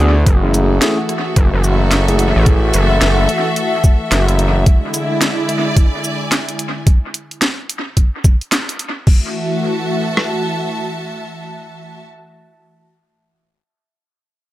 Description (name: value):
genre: glitch hop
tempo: 109 BPM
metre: 4/4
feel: swing 62% on 16ths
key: F# minor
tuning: A4 = 440 Hz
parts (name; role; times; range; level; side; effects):
- warm analog pad; sustained chords; 0.0-12.0 s; D3 to F#4; -22 LUFS; equal; chorus, sidechain pumping
- tine electric piano; stabs; 0.0-2.6 s; A3 to G#4; -20 LUFS; equal; sidechain pumping, dub echo
- gritty driven synth bass; bass; 0.0-4.6 s; F#1 to D2; -14 LUFS; equal; none
- bright studio string section; texture; 0.0-12.0 s; E4 to A5; -22 LUFS; left 1 dB; sidechain pumping
- boom bap sampler-style drum kit; drums; 0.3-10.3 s; kick drum, rim click; -11 LUFS; equal; overdrive
- drum and bass drum kit; drums; 0.3-9.2 s; crash cymbal, hi-hat, rim click, shaker, snare drum; -20 LUFS; equal; overdrive, dub echo
room: light reverb, digital ambience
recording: echo-heavy mix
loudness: -13 LUFS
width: side -15 dB against mid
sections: 0.0-9.1 A section; 9.1-11.3 B section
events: drop 0.0-9.1; band accent 8.5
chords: 0.3 F#m7; 4.7 E7; 6.9 N.C.; 9.1 F#m7